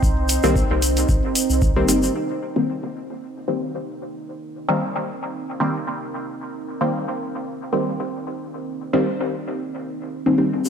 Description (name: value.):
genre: dub techno.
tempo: 113 BPM.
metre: 4/4.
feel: swing 55% on 16ths.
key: C minor.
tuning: A4 = 439 Hz.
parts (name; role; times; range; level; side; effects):
deep dark ambient pad; sustained chords; 0.0-10.7 s; C4 to C5; -28 LUFS; right 3 dB; chorus, built-in reverb, sidechain pumping.
round analog bass; bass; 0.0-2.1 s; G1 to C2; -23 LUFS; equal; tube saturation, sidechain pumping.
electronic kick drum; drums; 0.0-1.7 s; none; -21 LUFS; equal; none.
tube shaker; percussion; 0.0-2.1, 10.6-10.7 s; none; -26 LUFS; left 4 dB; none.
electronic hi-hat; drums; 0.3-2.0 s; none; -25 LUFS; right 3 dB; none.
filtered dub chord stab; stabs; 0.4-10.7 s; Eb3 to C4; -22 LUFS; left 1 dB; chorus, phaser, sidechain pumping, dub echo.
room: moderate lush hall reverb, RT60 1.8 s, digital ambience.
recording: none.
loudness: -20 LUFS.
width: side -7 dB against mid.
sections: 0.0-2.2 A section; 2.2-10.7 B section.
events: filter sweep on ambient pad 2.2-10.7.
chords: 0.0 Cm7.